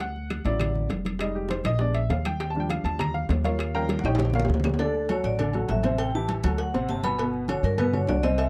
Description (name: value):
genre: Afro-Cuban jazz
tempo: 201 BPM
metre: 4/4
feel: straight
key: unclear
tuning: A4 = 439 Hz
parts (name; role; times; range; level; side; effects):
- warm upright piano; accompaniment; 0.0-8.5 s; B2 to Bb5; -31 LUFS; equal; none
- upright bass; bass; 0.0-8.5 s; F1 to G2; -30 LUFS; equal; none
- bongos and cowbell; percussion; 0.0-8.5 s; none; -38 LUFS; equal; none
- congas; percussion; 0.0-8.5 s; none; -35 LUFS; equal; none
- timbales and agogo bells; percussion; 0.0-8.5 s; none; -36 LUFS; equal; none
- claves; percussion; 0.3-4.8 s; none; -41 LUFS; equal; none
- vibraphone with medium hard mallets; melody; 4.8-8.5 s; A4 to B5; -31 LUFS; equal; none
room: little or no reverb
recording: dry, close 1970s-style studio recording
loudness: -26 LUFS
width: mono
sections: 0.0-4.8 A section; 4.8-8.5 A section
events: upright piano solo 0.0-4.8; drum fill 3.9-4.8; vibraphone solo 4.8-8.5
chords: 0.0 Dmaj7; 1.2 Fm7; 1.8 Bb7b9; 2.4 Ebmaj9; 3.6 Eb9; 4.8 Dadd9; 6.0 Am7; 6.6 D6; 7.2 Gmaj7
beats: | 0.00 0.30 0.60 0.90 | 1.20 1.50 1.80 2.10 | 2.40 2.70 3.00 3.30 | 3.60 3.90 4.20 4.50 | 4.80 5.09 5.39 5.69 | 5.99 6.29 6.59 6.89 | 7.19 7.49 7.79 8.08 | 8.38